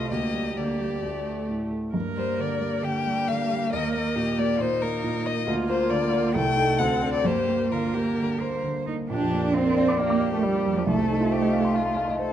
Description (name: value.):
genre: quick classical-period movement for piano quartet.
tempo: 135 BPM.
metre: 4/4.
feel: rubato.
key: G minor, Bb major from 9.1 s.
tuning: A4 = 438 Hz.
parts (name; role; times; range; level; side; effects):
warm violin; melody; 0.0-12.3 s; F4 to G5; -28 LUFS; left 6 dB; none.
rich cello; second line; 0.0-12.2 s; F3 to C5; -29 LUFS; right 5 dB; none.
dark viola; accompaniment; 0.0-12.2 s; F3 to D4; -29 LUFS; right 2 dB; none.
warm baby grand piano; accompaniment; 0.0-12.3 s; Bb1 to D6; -27 LUFS; equal; none.
room: moderate recital hall reverb, RT60 1.6 s.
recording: dark, warm production.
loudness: -22 LUFS.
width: side -10 dB against mid.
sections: 0.0-9.1 A section; 9.1-12.3 B section.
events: none.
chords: 0.1 Gm/D; 1.0 D5; 1.9 Gm; 3.7 Eb; 5.5 Bb/D; 6.3 Adim/C; 6.8 D7; 7.3 Gm; 9.1 Bb; 10.9 F7/C.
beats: | 0.11 0.56 1.02 1.48 | 1.94 2.39 2.84 3.28 | 3.72 4.16 4.60 5.03 | 5.47 5.91 6.35 6.79 | 7.25 7.72 8.18 8.64 | 9.11 9.55 10.00 10.44 | 10.88 11.32 11.76 12.20.